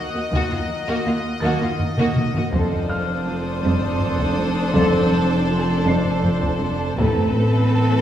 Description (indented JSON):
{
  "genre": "cinematic, suspense film score",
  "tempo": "81 BPM",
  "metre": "3/4",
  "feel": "straight",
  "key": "unclear",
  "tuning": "A4 = 439 Hz",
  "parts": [
    { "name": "warm symphonic violin section", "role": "melody", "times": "0.0-8.0 s", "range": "B4 to Eb5", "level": "-29 LUFS", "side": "left 2 dB", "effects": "none" },
    { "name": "evolving wavetable pad", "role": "sustained chords", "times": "0.0-8.0 s", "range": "C4 to A5", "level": "-34 LUFS", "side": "left 1 dB", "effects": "none" },
    { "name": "mellow French horn section", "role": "sustained chords", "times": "0.0-7.3 s", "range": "C3 to A4", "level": "-28 LUFS", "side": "left 1 dB", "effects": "none" },
    { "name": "warm symphonic cello section", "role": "riff", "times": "0.0-8.0 s", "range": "F2 to Eb4", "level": "-24 LUFS", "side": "equal", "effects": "none" },
    { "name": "felt-muted upright piano", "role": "texture", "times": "0.0-8.0 s", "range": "D5 to C7", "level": "-34 LUFS", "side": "left 1 dB", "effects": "none" },
    { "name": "warm symphonic violin section", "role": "texture", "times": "0.0-6.6 s", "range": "A5 to Gb6", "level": "-35 LUFS", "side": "left 2 dB", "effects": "none" },
    { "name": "warm chamber viola section", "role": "accompaniment", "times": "0.1-8.0 s", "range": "Bb3 to D4", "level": "-26 LUFS", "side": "equal", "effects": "none" },
    { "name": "dark symphonic cello section", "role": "bass", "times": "0.1-8.0 s", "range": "Eb2 to A2", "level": "-25 LUFS", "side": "right 1 dB", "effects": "none" },
    { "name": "warm studio violin section", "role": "second line", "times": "0.2-8.0 s", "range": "F4 to A4", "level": "-28 LUFS", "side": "right 1 dB", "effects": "none" },
    { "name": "dark symphonic double bass section", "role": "bass", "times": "0.3-8.0 s", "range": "F1 to Eb2", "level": "-28 LUFS", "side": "right 1 dB", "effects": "none" },
    { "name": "taiko ensemble", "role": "drums", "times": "0.3-7.7 s", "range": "none", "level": "-25 LUFS", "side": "equal", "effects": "none" }
  ],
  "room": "wet recital hall reverb, RT60 1.4 s",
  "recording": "recorded in a church or concert hall",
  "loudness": "-18 LUFS",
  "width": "side -10 dB against mid",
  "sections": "0.0-8.0 A section",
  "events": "drum fill 2.0-2.5",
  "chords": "0.0 Ebm; 2.5 F6; 7.0 Amadd9"
}